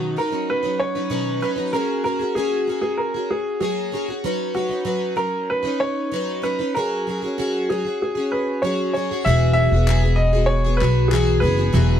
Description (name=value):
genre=acoustic pop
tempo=96 BPM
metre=4/4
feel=straight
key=B major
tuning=A4 = 440 Hz
part: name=warm upright piano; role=melody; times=0.0-12.0 s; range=F#4 to E5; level=-23 LUFS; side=right 1 dB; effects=none
part: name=picked plugged-in twelve-string acoustic guitar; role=accompaniment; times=0.0-12.0 s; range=B2 to B4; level=-23 LUFS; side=equal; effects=double-tracked left and right
part: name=upright bass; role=bass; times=9.3-12.0 s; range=E1 to B1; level=-17 LUFS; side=equal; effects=none
part: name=group handclap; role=percussion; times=9.9-11.3 s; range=none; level=-30 LUFS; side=left 9 dB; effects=none
room=little or no reverb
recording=dry, close 1970s-style studio recording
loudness=-19 LUFS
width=side -9 dB against mid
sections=0.0-9.3 A section; 9.3-12.0 B section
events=none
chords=0.0 Badd9; 1.7 F#add9; 4.3 Badd9/F#; 6.8 F#sus2; 9.3 Eadd9